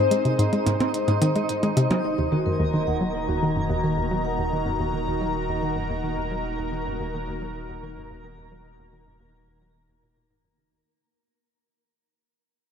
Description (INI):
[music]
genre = ambient, sequencer-driven space music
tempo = 109 BPM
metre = 4/4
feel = straight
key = Eb dorian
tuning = A4 = 442 Hz
[part]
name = soft octave-layered synth lead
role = melody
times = 0.0-1.5 s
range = C5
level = -28 LUFS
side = left 4 dB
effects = chorus, phaser, analog delay
[part]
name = phased analog pad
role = sustained chords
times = 0.0-10.9 s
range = Eb3 to Bb5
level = -28 LUFS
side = equal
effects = phaser, chorus
[part]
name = hollow square pluck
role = riff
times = 0.0-10.8 s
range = Eb2 to C4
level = -25 LUFS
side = equal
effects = chorus, analog delay
[part]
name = twinkling granular texture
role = texture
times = 0.0-10.9 s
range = Bb3 to Eb5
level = -33 LUFS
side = equal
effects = built-in reverb
[part]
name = electronic hi-hat and percussion blips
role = percussion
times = 0.1-2.0 s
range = none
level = -32 LUFS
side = right 2 dB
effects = analog delay
[part]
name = vibraphone with medium mallets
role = arpeggios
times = 2.0-6.3 s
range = Eb4 to Gb5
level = -32 LUFS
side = moving between left 1 dB and right 6 dB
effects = auto-pan, analog delay
[part]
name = warm sub bass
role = bass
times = 2.0-10.8 s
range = Eb1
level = -35 LUFS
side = equal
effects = none
[sound]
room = wet huge ambient reverb, RT60 8.6 s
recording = in a vast, echoing space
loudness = -22 LUFS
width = side -7 dB against mid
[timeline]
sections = 0.0-2.0 A section; 2.0-10.9 B section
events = filter sweep on synth arpeggio sound 0.0-2.0; fade-out on synth arpeggio sound 2.0-10.9; fade-out 2.0-10.9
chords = 0.0 Ab; 2.0 Ebm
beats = 0.40 0.95 1.50 | 2.05 2.60 3.15 3.70 | 4.25 4.80 5.35 5.90 | 6.45 7.00 7.55 8.10 | 8.65 9.20 9.75 10.30